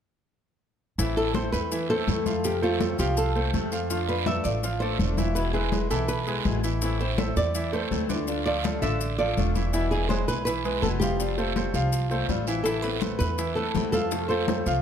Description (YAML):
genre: latin, Cuban son and guajira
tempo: 164 BPM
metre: 4/4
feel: straight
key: A minor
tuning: A4 = 440 Hz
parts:
  - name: fingerpicked swing-style acoustic guitar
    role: accompaniment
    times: 1.0-14.8 s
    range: B2 to F4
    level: -33 LUFS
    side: left 8 dB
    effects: none
  - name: bright grand piano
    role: arpeggios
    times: 1.0-14.8 s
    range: D3 to F5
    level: -30 LUFS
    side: right 2 dB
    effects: none
  - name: upright bass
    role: bass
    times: 1.0-14.8 s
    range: E1 to F2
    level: -29 LUFS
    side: equal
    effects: none
  - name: congas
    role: percussion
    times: 1.0-14.8 s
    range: none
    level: -32 LUFS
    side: left 4 dB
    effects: none
  - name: guiro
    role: percussion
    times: 1.0-14.8 s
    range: none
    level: -37 LUFS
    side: right 8 dB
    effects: none
  - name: maracas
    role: percussion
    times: 1.0-14.8 s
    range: none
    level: -38 LUFS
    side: left 8 dB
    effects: none
  - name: nylon-string guitar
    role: melody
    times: 1.2-14.8 s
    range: F4 to F5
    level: -29 LUFS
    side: right 1 dB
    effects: tape echo
  - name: bongos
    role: percussion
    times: 12.7-14.8 s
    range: none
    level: -36 LUFS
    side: left 8 dB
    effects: none
room: light reverb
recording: none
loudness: -23 LUFS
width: side -8 dB against mid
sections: 1.0-14.8 A section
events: none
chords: 1.0 Am; 2.4 F; 3.9 Dm; 5.4 E; 6.8 Am; 8.3 Dm; 9.7 E; 11.2 Fadd9; 12.7 Amadd9; 14.1 F